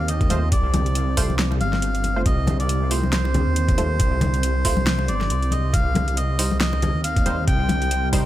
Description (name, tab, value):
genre	deep dubstep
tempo	138 BPM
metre	4/4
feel	swing 57% on 16ths, half-time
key	unclear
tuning	A4 = 439 Hz
part	melodica	melody	0.0-8.1 s	C5 to G5	-27 LUFS	equal	dub echo
part	deep dark ambient pad	sustained chords	0.0-8.3 s	C4 to G4	-32 LUFS	right 1 dB	chorus, built-in reverb
part	dark detuned saw bass	bass	0.0-8.3 s	G1 to Eb2	-22 LUFS	equal	none
part	deep house drum kit	drums	0.1-8.2 s	hi-hat, snare drum	-26 LUFS	equal	small room ambience
part	electronic kick drum	drums	0.2-8.2 s	none	-22 LUFS	equal	small room ambience
part	filtered dub chord stab	stabs	0.3-8.2 s	G3 to C5	-32 LUFS	right 3 dB	chorus, dub echo
part	congas	percussion	0.3-7.8 s	none	-28 LUFS	left 2 dB	none
room	little or no reverb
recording	none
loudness	-18 LUFS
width	side -14 dB against mid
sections	0.0-8.3 A section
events	none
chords	0.0 F; 5.7 Cm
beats	0.09 | 0.52 0.95 1.39 1.82 | 2.26 2.69 3.13 3.56 | 4.00 4.43 4.87 5.30 | 5.74 6.17 6.61 7.04 | 7.48 7.91